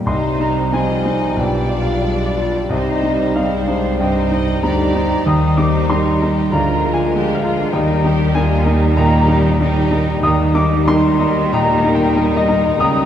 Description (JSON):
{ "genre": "classical, romantic movement for piano and orchestra", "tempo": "87-102 BPM", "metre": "4/4", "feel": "rubato", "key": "C minor", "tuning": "A4 = 437 Hz", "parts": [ { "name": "clear grand piano", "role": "melody", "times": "0.0-13.1 s", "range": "B1 to Eb6", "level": "-17 LUFS", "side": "left 1 dB", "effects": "none" }, { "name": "silver concert flute", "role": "second line", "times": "0.0-13.1 s", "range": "D5 to Eb6", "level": "-25 LUFS", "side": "left 1 dB", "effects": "none" }, { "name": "rich symphonic violin section", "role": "melody", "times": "0.1-13.1 s", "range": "G4 to Eb5", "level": "-30 LUFS", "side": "left 3 dB", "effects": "none" }, { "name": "clear symphonic violin section", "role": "second line", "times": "0.1-13.1 s", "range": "C4 to G4", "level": "-27 LUFS", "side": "left 3 dB", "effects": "none" }, { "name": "dark clarinet", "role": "second line", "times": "0.1-13.1 s", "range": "Eb4 to F4", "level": "-27 LUFS", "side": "left 1 dB", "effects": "none" }, { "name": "mellow bassoon", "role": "accompaniment", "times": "0.1-13.1 s", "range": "G3 to Ab3", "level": "-27 LUFS", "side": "right 1 dB", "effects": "none" }, { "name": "rich symphonic viola section", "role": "accompaniment", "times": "0.1-13.1 s", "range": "F3 to Bb3", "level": "-25 LUFS", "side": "right 2 dB", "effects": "none" }, { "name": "dark French horn section", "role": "sustained chords", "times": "0.1-13.1 s", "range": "G3 to F4", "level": "-25 LUFS", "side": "equal", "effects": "none" }, { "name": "rich symphonic cello section", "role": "bass", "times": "0.1-13.1 s", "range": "B2 to Eb3", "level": "-25 LUFS", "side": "right 1 dB", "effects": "none" }, { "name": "rich symphonic double bass section", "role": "bass", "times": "0.1-13.1 s", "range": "B1 to Eb2", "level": "-22 LUFS", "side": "right 2 dB", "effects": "none" }, { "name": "timpani", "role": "percussion", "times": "5.3-6.2, 10.2-11.2 s", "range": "Eb3", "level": "-25 LUFS", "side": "left 3 dB", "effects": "none" } ], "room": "wet scoring stage reverb, RT60 1.7 s", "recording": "dark, warm production", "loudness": "-14 LUFS", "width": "side -10 dB against mid", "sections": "0.1-13.1 A section", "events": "none", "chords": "0.1 Cm; 1.4 G7/B; 2.7 Cm; 5.3 Eb; 6.5 Bb7/D; 7.7 Eb", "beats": "| 0.07 0.73 1.38 2.04 | 2.71 3.36 4.00 4.63 | 5.26 5.89 6.52 7.14 | 7.73 8.35 8.97 9.60 | 10.23 10.88 11.53 12.16 | 12.80" }